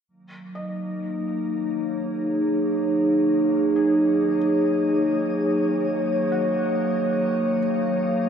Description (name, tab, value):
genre	ambient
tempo	free time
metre	none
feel	none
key	Eb minor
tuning	A4 = 435 Hz
part	warbly tape-like pad	sustained chords	0.5-8.3 s	Gb3 to F5	-20 LUFS	equal	chorus, built-in reverb, shimmer reverb
part	organ-like drone	drone	0.3-8.3 s	Eb3 to Bb3	-39 LUFS	left 1 dB	ensemble chorus, built-in reverb
part	felt-muted upright piano	arpeggios	0.6-8.3 s	Gb4 to Eb5	-40 LUFS	left 1 dB	analog delay, shimmer reverb
room	wet lush hall reverb, RT60 2.6 s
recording	dreamy mix soaked in reverb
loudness	-20 LUFS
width	side -7 dB against mid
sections	0.1-8.3 A section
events	fade-in on felt piano 0.1-8.3; fade-in on synth drone 0.1-8.3; filter sweep on ambient pad 0.1-8.3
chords	0.1 Ebm7